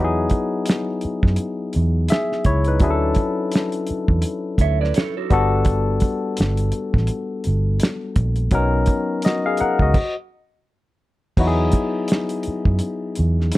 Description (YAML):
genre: R&B, neo-soul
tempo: 84 BPM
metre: 4/4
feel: swing 59% on 16ths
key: unclear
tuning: A4 = 440 Hz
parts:
  - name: barky tine electric piano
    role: accompaniment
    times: 0.0-13.6 s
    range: F#3 to F#5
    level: -22 LUFS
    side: left 3 dB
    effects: overdrive
  - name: vintage muted fingered electric bass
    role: bass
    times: 0.0-13.5 s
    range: G1 to F#2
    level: -20 LUFS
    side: right 1 dB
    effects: none
  - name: cloth-damped thuddy drum kit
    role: drums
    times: 0.3-13.6 s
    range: crash cymbal, hi-hat, kick drum, snare drum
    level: -20 LUFS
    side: right 1 dB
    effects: none
  - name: electric guitar through a small old amp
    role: second line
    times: 4.6-5.5 s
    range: F#4 to E5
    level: -25 LUFS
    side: right 13 dB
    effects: none
room: little or no reverb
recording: none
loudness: -18 LUFS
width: side -17 dB against mid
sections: 0.0-11.4 A section; 11.4-13.6 A section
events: stop 9.9-11.4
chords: 0.0 Emaj9; 2.8 Dmaj9; 5.3 Gmaj9; 8.5 Bmaj9; 11.4 Emaj9